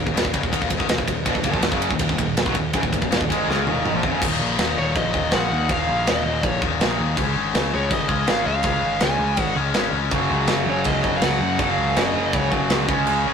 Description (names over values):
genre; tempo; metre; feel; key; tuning
heavy metal; 162 BPM; 4/4; straight; Eb minor; A4 = 440 Hz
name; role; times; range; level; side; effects
heavy high-gain guitar; riff; 0.0-13.3 s; Eb2 to Db4; -24 LUFS; left 7 dB; distortion
growling picked electric bass; bass; 0.0-13.3 s; Eb1 to Gb2; -26 LUFS; equal; overdrive
tight metal drum kit; drums; 0.1-13.2 s; crash cymbal, kick drum, ride cymbal, snare drum, toms; -23 LUFS; right 1 dB; none
distorted electric guitar; riff; 1.3-4.2, 10.1-13.3 s; Eb2 to Db4; -24 LUFS; right 5 dB; distortion
high-gain lead guitar; melody; 4.8-12.5 s; Db5 to Ab5; -25 LUFS; right 1 dB; distortion
room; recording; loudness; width
light reverb; rough rehearsal-room recording, tube saturation; -18 LUFS; side -6 dB against mid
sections
0.0-4.2 A section; 4.2-13.3 B section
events
drum fill 3.5-4.2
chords
0.0 Ebm; 4.2 Eb5; 7.2 Db; 10.1 Gb5